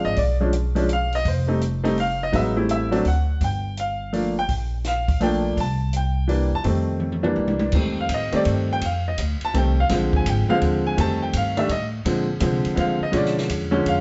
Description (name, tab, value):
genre	jazz piano trio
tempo	166 BPM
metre	3/4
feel	swing 65% on 8ths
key	F mixolydian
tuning	A4 = 441 Hz
part	clear upright piano	melody	0.0-14.0 s	D3 to A5	-24 LUFS	equal	none
part	upright bass	bass	0.0-14.0 s	F1 to D3	-27 LUFS	equal	none
part	compact cocktail drum kit	drums	0.2-14.0 s	crash cymbal, hi-hat, kick drum, ride cymbal, snare drum, toms	-31 LUFS	equal	none
room	moderate large studio reverb, RT60 1.0 s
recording	band playing live in one room, nothing above 7.8 kHz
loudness	-22 LUFS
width	mono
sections	0.0-7.7 A section; 7.7-14.0 A section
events	drum fill 7.0-7.7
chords	0.2 Bdim7; 1.2 F9; 2.3 Am7; 3.0 D; 3.4 Gm7; 5.6 C7; 6.7 F9; 7.4 C9; 7.7 F9; 9.9 Bb9; 11.0 F9; 12.1 Bb9; 13.1 Bdim7